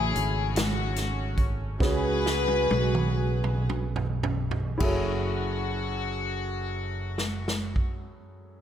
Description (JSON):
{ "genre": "slow gospel", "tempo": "34-51 BPM (dotted quarters)", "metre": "6/8", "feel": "straight", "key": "F# minor", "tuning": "A4 = 441 Hz", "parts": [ { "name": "warm studio string section", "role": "melody", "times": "0.0-7.8 s", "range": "C#4 to B4", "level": "-30 LUFS", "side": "left 3 dB", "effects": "none" }, { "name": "warm concert grand piano", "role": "accompaniment", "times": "0.0-8.6 s", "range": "F#2 to C#5", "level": "-34 LUFS", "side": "equal", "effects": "none" }, { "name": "fingered electric bass", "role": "bass", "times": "0.0-7.8 s", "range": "F#1 to C#2", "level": "-29 LUFS", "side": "right 1 dB", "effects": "none" }, { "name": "swinging big-band drum kit", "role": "drums", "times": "0.2-8.0 s", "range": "crash cymbal, hi-hat, kick drum, snare drum, toms", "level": "-30 LUFS", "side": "right 1 dB", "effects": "none" } ], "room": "light reverb", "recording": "none", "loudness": "-25 LUFS", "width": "side -10 dB against mid", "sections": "0.0-4.8 A section; 4.8-8.3 B section", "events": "slowing down 0.0-4.8; drum fill 1.8-4.8", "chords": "0.0 F#m9; 1.8 C#7sus4; 4.8 F#m9" }